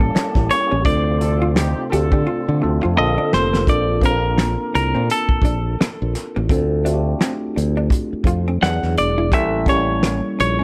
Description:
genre	R&B, neo-soul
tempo	85 BPM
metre	4/4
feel	swing 59% on 16ths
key	Bb major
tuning	A4 = 442 Hz
part	semi-hollow electric guitar	melody	0.0-10.6 s	A4 to F#5	-23 LUFS	equal	plate reverb
part	vintage hollow-body jazz guitar	second line	0.0-10.6 s	Bb3 to G4	-29 LUFS	equal	plate reverb
part	tine electric piano	accompaniment	0.0-10.6 s	D3 to Bb4	-26 LUFS	equal	overdrive, phaser, plate reverb
part	percussive tonewheel organ	sustained chords	0.0-3.7 s	C3 to A4	-31 LUFS	equal	slow rotary speaker, overdrive, chorus vibrato, plate reverb
part	fingered electric bass	bass	0.0-10.6 s	E1 to D3	-22 LUFS	equal	none
part	warm soul drum kit	drums	0.2-10.6 s	finger snaps, hi-hat, kick drum, snare drum	-22 LUFS	equal	none
part	warm horn section	stabs	1.2-2.6 s	C4 to A4	-30 LUFS	equal	plate reverb
room	light reverb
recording	none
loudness	-18 LUFS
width	mono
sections	0.0-3.7 A section; 3.7-10.6 B section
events	drum fill 2.3-3.7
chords	0.0 A7b9; 0.8 Dm7; 3.0 Bbmaj7; 3.7 Bbmaj9; 6.5 Dm7; 8.6 E9; 9.3 A7b9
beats	0.14 | 0.85 1.55 2.26 2.96 | 3.67 4.38 5.08 5.79 | 6.49 7.20 7.91 8.61 | 9.32 10.02

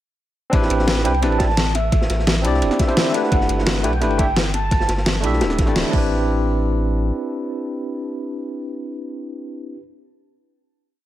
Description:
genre	liquid drum and bass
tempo	172 BPM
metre	4/4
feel	straight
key	A dorian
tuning	A4 = 440 Hz
part	barky tine electric piano	accompaniment	0.5-9.8 s	A3 to E5	-22 LUFS	equal	medium stereo tremolo, ping-pong delay
part	warm sub bass	bass	0.5-7.1 s	D1 to C2	-22 LUFS	equal	none
part	crunchy breakbeat drum kit	drums	0.5-5.8 s	ride cymbal, snare drum	-27 LUFS	equal	high-pass filter on cymbals, high-pass filter on snare, high-pass filter on room
part	electronic kick drum	drums	0.5-6.0 s	none	-19 LUFS	equal	overdrive
part	pop drum kit	drums	0.5-6.0 s	crash cymbal, hi-hat, snare drum	-23 LUFS	left 1 dB	overdrive
part	warm velvety synth lead	melody	1.1-5.2 s	E5 to A5	-26 LUFS	right 1 dB	chorus, tape echo
room	light reverb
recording	none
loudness	-17 LUFS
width	side -13 dB against mid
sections	0.5-6.1 drop; 6.1-8.9 final hit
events	drop 0.5-6.1; band accent 5.8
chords	0.5 Am11; 3.3 G69; 5.9 Am11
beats	| 0.53 0.88 1.23 1.57 | 1.92 2.27 2.62 2.97 | 3.32 3.67 4.02 4.36 | 4.71 5.06 5.41 5.76 | 6.11 6.46 6.81 7.16 | 7.50 7.85 8.20 8.55

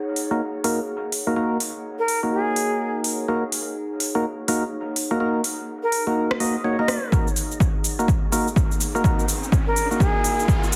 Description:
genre	bass house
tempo	125 BPM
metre	4/4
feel	swing 61% on 16ths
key	Eb minor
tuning	A4 = 439 Hz
part	warbly tape-like pad	texture	0.0-10.8 s	Eb4 to Gb5	-35 LUFS	equal	chorus, built-in reverb, sidechain pumping
part	big-room dance drum kit	drums	0.2-10.8 s	hi-hat, rim click, shaker	-29 LUFS	equal	overdrive
part	percussive organ stab	stabs	0.3-10.8 s	Bb3 to Eb5	-27 LUFS	equal	chorus, sidechain pumping, dub echo
part	mellow silver concert flute	melody	2.0-10.7 s	Ab4 to Eb5	-28 LUFS	equal	dub echo
part	electronic kick drum	drums	7.1-10.6 s	none	-23 LUFS	equal	overdrive
part	riser	sound effects	8.3-10.8 s	none	-36 LUFS	equal	none
room	moderate plate reverb, RT60 1.2 s, digital ambience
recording	heavily compressed radio sound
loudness	-23 LUFS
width	mono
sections	0.0-10.8 A section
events	build-up 0.0-10.8; drum fill 7.1-10.8; riser 8.3-10.8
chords	0.0 Ebm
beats	0.40 0.88 | 1.36 1.84 2.32 2.80 | 3.28 3.76 4.24 4.72 | 5.20 5.68 6.16 6.64 | 7.12 7.60 8.08 8.56 | 9.04 9.52 10.00 10.48

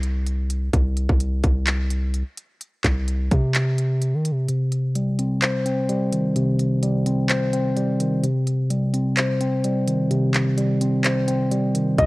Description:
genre	hip hop, trap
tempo	128 BPM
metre	4/4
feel	half-time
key	C minor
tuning	A4 = 440 Hz
part	long sustained 808-style bass	bass	0.0-4.5, 12.0-12.1 s	C2 to Eb3	-21 LUFS	equal	none
part	trap drum kit	drums	0.0-12.1 s	handclaps, hi-hat, kick drum	-24 LUFS	equal	cassette tape
part	mellow tine electric piano	accompaniment	4.5-12.1 s	C3 to C5	-20 LUFS	equal	low-pass filter
part	dark concert grand piano	melody	12.0-12.1 s	Eb5	-17 LUFS	left 1 dB	low-pass filter, cassette tape
room	little or no reverb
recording	home recording on cassette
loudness	-19 LUFS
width	side -22 dB against mid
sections	0.0-12.1 A section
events	break 0.0-4.5; kick muted 4.5-12.0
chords	0.0 C5; 0.7 Cm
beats	0.27 | 0.73 1.20 1.67 2.14 | 2.61 3.08 3.55 4.02 | 4.49 4.95 5.42 5.89 | 6.36 6.83 7.30 7.77 | 8.23 8.70 9.17 9.64 | 10.11 10.58 11.05 11.52 | 11.98

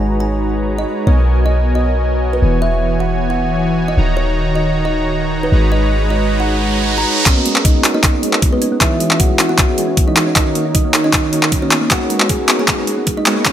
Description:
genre	future bass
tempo	155 BPM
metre	4/4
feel	swing 53% on 16ths, half-time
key	unclear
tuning	A4 = 441 Hz
part	kalimba	melody	0.0-13.5 s	B3 to A#5	-20 LUFS	right 2 dB	sidechain pumping, tape echo
part	soft supersaw	riff	0.0-13.5 s	D#3 to A#5	-19 LUFS	equal	sidechain pumping, low-pass filter
part	warm 808-style bass	bass	0.0-7.1 s	D#1 to B1	-16 LUFS	equal	sidechain pumping
part	riser	sound effects	6.0-7.3, 13.5 s	none	-21 LUFS	right 4 dB	none
part	thumb-piano-like synth pluck	arpeggios	7.3-13.5 s	G#3 to D#4	-23 LUFS	right 2 dB	chorus, sidechain pumping, dub echo
part	dubstep drum kit	drums	7.3-13.5 s	handclaps, hi-hat	-15 LUFS	equal	overdrive, high-pass filter on snare, high-pass filter on hats, high-pass filter on room
part	electronic kick drum	drums	7.3-13.5 s	none	-15 LUFS	equal	overdrive
room	light reverb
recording	high-pass filter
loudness	-12 LUFS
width	side -10 dB against mid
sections	0.0-7.3 A section; 7.3-13.5 B section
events	filter sweep on supersaw synth 0.0-7.3; riser 6.0-7.3; build-up 7.3-13.5; drum fill 7.3-13.5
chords	0.0 G#m11; 1.1 Bmaj13; 2.4 E69; 4.0 D#m7; 5.5 G#m11; 8.6 E69; 10.2 D#m7; 11.7 G#m11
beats	0.30 0.68 | 1.07 1.46 1.84 2.23 | 2.62 3.00 3.39 3.78 | 4.17 4.55 4.94 5.33 | 5.71 6.10 6.49 6.88 | 7.26 7.65 8.04 8.43 | 8.81 9.20 9.59 9.97 | 10.36 10.75 11.13 11.52 | 11.91 12.30 12.68 13.07 | 13.46

